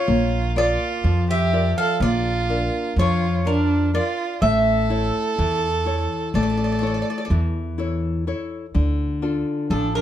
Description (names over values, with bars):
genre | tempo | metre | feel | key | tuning
greek folk, Greek bouzouki band | 125 BPM (eighths) | 9/8 | straight | unclear | A4 = 440 Hz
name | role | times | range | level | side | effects
Greek bouzouki | melody | 0.0-10.0 s | A4 to F5 | -24 LUFS | right 1 dB | slapback echo, plate reverb
clear violin | second line | 0.0-10.0 s | D4 to A4 | -25 LUFS | right 4 dB | none
nylon-string guitar | accompaniment | 0.1-10.0 s | D3 to D5 | -25 LUFS | left 3 dB | none
upright bass | bass | 0.1-10.0 s | A1 to F2 | -22 LUFS | equal | none
room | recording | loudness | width
moderate studio reverb, RT60 0.6 s | dark, warm production | -19 LUFS | side -11 dB against mid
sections
0.0-8.7 A section; 8.7-10.0 B section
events
none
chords
0.1 Bb; 4.4 A; 8.7 Dm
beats
| 0.08 0.56 1.04 1.53 2.01 2.49 2.97 3.46 3.94 | 4.42 4.90 5.38 5.86 6.34 6.82 7.30 7.78 8.26 | 8.74 9.22 9.70